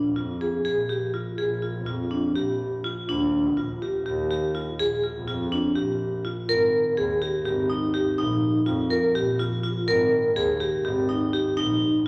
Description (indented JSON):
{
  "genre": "contemporary instrumental, chamber music in an uneven meter",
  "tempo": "247 BPM (eighths)",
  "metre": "7/8",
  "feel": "straight",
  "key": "Bb mixolydian",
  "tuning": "A4 = 436 Hz",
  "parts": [
    { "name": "vibraphone with hard mallets", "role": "arpeggios", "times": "0.0-12.1 s", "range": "D4 to Bb4", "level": "-26 LUFS", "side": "equal", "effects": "none" },
    { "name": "rich double bass", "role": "bass", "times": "0.0-12.0 s", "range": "Ab1 to F2", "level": "-32 LUFS", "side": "equal", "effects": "none" }
  ],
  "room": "wet recital hall reverb, RT60 1.8 s",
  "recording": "none",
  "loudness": "-25 LUFS",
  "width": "mono",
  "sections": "0.0-6.5 A section; 6.5-12.1 B section",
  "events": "none",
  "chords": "0.0 Bb7(no3); 3.1 Ebmaj9; 4.8 Bb7; 6.5 Ab5; 8.2 Bbsus4; 9.9 Ab5; 11.6 Bbsus4"
}